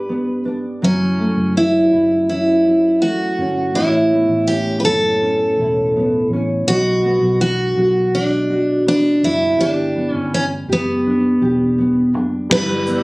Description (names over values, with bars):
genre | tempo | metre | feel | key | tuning
acoustic pop | 82 BPM | 4/4 | straight | unclear | A4 = 440 Hz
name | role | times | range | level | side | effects
picked steel-string acoustic guitar | melody | 0.0-13.0 s | B3 to B4 | -16 LUFS | equal | none
nylon-string guitar | accompaniment | 0.0-13.0 s | G2 to G4 | -21 LUFS | equal | double-tracked left and right
vintage muted fingered electric bass | bass | 0.8-13.0 s | E1 to B1 | -25 LUFS | equal | none
warm upright piano | accompaniment | 12.5-13.0 s | G3 to B4 | -22 LUFS | left 1 dB | none
glassy FM pad | sustained chords | 12.7-13.0 s | G4 to E6 | -31 LUFS | equal | ensemble chorus, built-in reverb, phaser
loose indie drum kit | drums | 12.5-13.0 s | crash cymbal, kick drum, shaker | -22 LUFS | equal | none
room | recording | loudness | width
light reverb | recorded on a phone in the room, studio reverb | -14 LUFS | side -24 dB against mid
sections
0.0-12.5 A section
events
none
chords
0.0 G; 0.8 F#m7; 3.8 Aadd9; 6.7 Bm; 9.6 G; 12.5 G6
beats
0.10 | 0.83 1.56 2.29 3.02 | 3.75 4.49 5.22 5.95 | 6.68 7.41 8.14 8.87 | 9.60 10.32 11.05 11.78 | 12.51